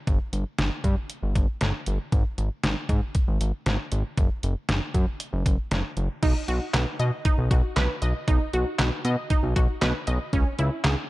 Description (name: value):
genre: synth-pop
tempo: 117 BPM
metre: 4/4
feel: straight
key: unclear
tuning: A4 = 440 Hz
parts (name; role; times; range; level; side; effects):
- fat analog bass; bass; 0.1-11.0 s; F#1 to B2; -25 LUFS; equal; none
- detuned 8-bit digital drum machine; drums; 0.1-11.0 s; crash cymbal, handclaps, hi-hat, kick drum, snare drum; -25 LUFS; equal; none
- resonant blip pluck; arpeggios; 6.2-11.0 s; C#4 to D#5; -29 LUFS; right 2 dB; chorus, tape echo
room: light reverb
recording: dark, warm production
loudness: -23 LUFS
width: side -18 dB against mid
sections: 0.0-6.2 A section; 6.2-11.1 B section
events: none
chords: 0.0 N.C.; 6.2 B; 10.3 C#m